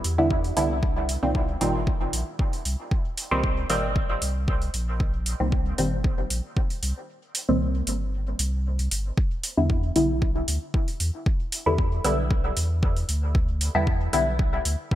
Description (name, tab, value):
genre	dub techno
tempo	115 BPM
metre	4/4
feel	straight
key	E minor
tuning	A4 = 440 Hz
part	warm sub bass	bass	0.0-14.8 s	G1 to E2	-27 LUFS	equal	sidechain pumping
part	electronic hi-hat	drums	0.0-14.8 s	none	-29 LUFS	right 1 dB	overdrive
part	filtered dub chord stab	stabs	0.2-14.3 s	Bb2 to E4	-26 LUFS	equal	chorus, phaser, sidechain pumping, dub echo
part	electronic kick drum	drums	0.3-15.0 s	none	-24 LUFS	equal	overdrive
room	light reverb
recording	bright 1980s-style digital production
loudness	-22 LUFS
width	side -13 dB against mid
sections	0.0-9.2 A section; 9.2-15.0 A section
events	kick drops out 7.1-9.2; filter sweep on synth stab 9.2-15.0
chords	0.0 Em7; 0.8 Cm7; 9.2 Em7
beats	0.30 | 0.83 1.35 1.87 2.39 | 2.91 3.44 3.96 4.48 | 5.00 5.52 6.04 6.57 | 7.09 7.61 8.13 8.65 | 9.18 9.70 10.22 10.74 | 11.26 11.78 12.30 12.83 | 13.35 13.87 14.39 14.91